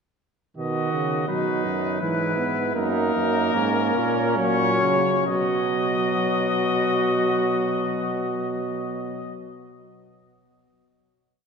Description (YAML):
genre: classical, imitative canzona for brass ensemble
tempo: 64-85 BPM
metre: 3/4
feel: straight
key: B major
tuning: A4 = 441 Hz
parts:
  - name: clear trumpet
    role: melody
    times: 0.6-9.4 s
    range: A#4 to D#5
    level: -27 LUFS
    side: left 6 dB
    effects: none
  - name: warm flugelhorn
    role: second line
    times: 0.6-9.4 s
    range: C#4 to F#4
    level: -27 LUFS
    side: right 5 dB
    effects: none
  - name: mellow trombone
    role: accompaniment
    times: 0.6-9.4 s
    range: D#3 to B3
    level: -26 LUFS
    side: equal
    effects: none
  - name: warm euphonium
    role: bass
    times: 0.6-9.4 s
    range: F#2 to C#3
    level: -28 LUFS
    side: right 2 dB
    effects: none
room: wet church reverb, RT60 2.8 s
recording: none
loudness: -21 LUFS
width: side -5 dB against mid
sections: 0.6-5.3 exposition; 5.3-10.8 final chord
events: slowing down 0.6-6.7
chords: 0.6 B; 2.0 E/G#; 2.8 F#; 5.3 B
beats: | 0.57 1.28 2.00 | 2.75 3.54 4.37 | 5.27 6.20 7.12 | 8.04 8.97